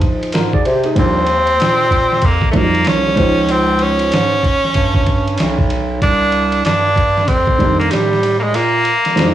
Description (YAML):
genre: hip hop, jazz-hop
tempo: 95 BPM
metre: 4/4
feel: swing 61% on 16ths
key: Eb major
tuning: A4 = 440 Hz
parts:
  - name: warm upright piano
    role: accompaniment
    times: 0.0-9.3 s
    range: D3 to D5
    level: -18 LUFS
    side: right 1 dB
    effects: none
  - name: warm bass clarinet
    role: bass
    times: 0.0-9.3 s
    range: Cb2 to C3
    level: -19 LUFS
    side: right 1 dB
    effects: tube saturation
  - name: boom bap sampler-style drum kit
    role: drums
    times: 0.0-9.3 s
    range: hi-hat, kick drum, ride cymbal, snare drum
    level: -18 LUFS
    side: equal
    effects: none
  - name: bright tenor saxophone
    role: melody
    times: 1.0-9.3 s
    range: G3 to D4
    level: -15 LUFS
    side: equal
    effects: none
room: studio ambience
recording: blown-out, overdriven recording, vinyl crackle, overdrive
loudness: -12 LUFS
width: side -12 dB against mid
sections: 0.0-9.3 A section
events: none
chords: 0.0 Bb9sus4; 1.0 Ebadd9; 3.2 Dbmaj9; 6.0 Cm9; 8.5 Bb7sus2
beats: 0.34 | 0.97 1.60 2.23 2.86 | 3.49 4.12 4.76 5.39 | 6.02 6.65 7.28 7.91 | 8.55 9.18